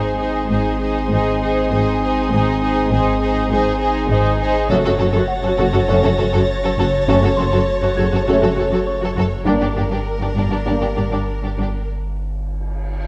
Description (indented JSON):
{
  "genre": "cinematic, suspense film score",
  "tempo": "100 BPM",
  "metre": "4/4",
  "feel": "straight",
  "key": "unclear",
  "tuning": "A4 = 440 Hz",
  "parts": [
    { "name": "rich symphonic violin section", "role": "melody", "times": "0.0-11.9 s", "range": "Bb4 to Db5", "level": "-26 LUFS", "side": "equal", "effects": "none" },
    { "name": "rich studio violin section", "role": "second line", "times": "0.0-11.7 s", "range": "G4 to A4", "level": "-27 LUFS", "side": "equal", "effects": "none" },
    { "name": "clear symphonic viola section", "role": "accompaniment", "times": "0.0-11.6 s", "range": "D4 to Gb4", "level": "-26 LUFS", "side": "equal", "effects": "none" },
    { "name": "mellow French horn section", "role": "sustained chords", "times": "0.0-10.9 s", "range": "Ab3 to D4", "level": "-24 LUFS", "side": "equal", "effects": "none" },
    { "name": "rich symphonic cello section", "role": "bass", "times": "0.0-11.7 s", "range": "Gb2 to Ab2", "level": "-25 LUFS", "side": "equal", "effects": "none" },
    { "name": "rich symphonic double bass section", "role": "bass", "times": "0.0-11.6 s", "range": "Gb1 to Ab1", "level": "-26 LUFS", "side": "equal", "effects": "none" },
    { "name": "warm sub bass", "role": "drone", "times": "0.0-13.1 s", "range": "Gb1 to Ab1", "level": "-28 LUFS", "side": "equal", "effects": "none" },
    { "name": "rich symphonic violin section", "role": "texture", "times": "0.0-9.1 s", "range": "C6 to Bb6", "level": "-38 LUFS", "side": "equal", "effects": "none" },
    { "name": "celesta", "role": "texture", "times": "4.1-13.1 s", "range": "Ab4 to Ab6", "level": "-32 LUFS", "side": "equal", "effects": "none" },
    { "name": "cymbal swell", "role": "sound effects", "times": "12.1-13.1 s", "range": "none", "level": "-40 LUFS", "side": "equal", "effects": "none" }
  ],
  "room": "moderate scoring stage reverb, RT60 1.9 s",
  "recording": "none",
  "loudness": "-18 LUFS",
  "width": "mono",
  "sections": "0.0-13.1 A section",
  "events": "break 11.9-13.1; cymbal swell 12.1-13.1",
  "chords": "0.0 Ab; 4.7 Gbm; 9.5 Gm"
}